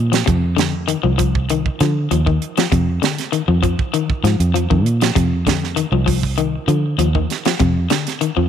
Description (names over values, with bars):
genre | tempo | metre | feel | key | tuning
afrobeat | 98 BPM | 4/4 | straight | unclear | A4 = 441 Hz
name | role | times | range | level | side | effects
fingered electric bass | bass | 0.0-8.5 s | C2 to D3 | -17 LUFS | right 1 dB | none
electric guitar at the edge of break-up | arpeggios | 0.1-8.4 s | C3 to F3 | -20 LUFS | left 10 dB | none
tight funk drum kit | drums | 0.1-8.4 s | hi-hat, kick drum, snare drum | -20 LUFS | right 5 dB | none
room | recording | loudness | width
light reverb | 1960s-style stereo | -15 LUFS | side -9 dB against mid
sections
0.0-8.5 A section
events
none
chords
0.0 F7(no3)